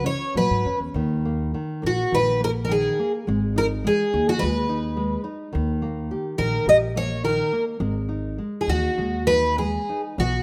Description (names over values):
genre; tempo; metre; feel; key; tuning
fado-style ballad; 104 BPM; 4/4; uneven beats, rubato; G# minor; A4 = 436 Hz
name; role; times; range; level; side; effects
picked twelve-string acoustic guitar; melody; 0.0-10.4 s; F#4 to D#5; -24 LUFS; equal; none
nylon-string guitar; accompaniment; 0.0-10.4 s; D#3 to G4; -31 LUFS; equal; none
upright bass; bass; 0.0-10.4 s; G#1 to A#2; -28 LUFS; equal; none
room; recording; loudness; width
light reverb, studio reverb; rough home demo mix; -23 LUFS; mono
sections
0.0-10.2 A section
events
none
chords
0.0 F#5; 1.0 D#5; 3.3 G#m; 5.5 D#; 7.8 G#5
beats
0.35 | 0.95 1.54 2.12 2.70 | 3.28 3.85 4.41 4.97 | 5.54 6.10 6.66 7.23 | 7.80 8.38 8.98 9.59 | 10.19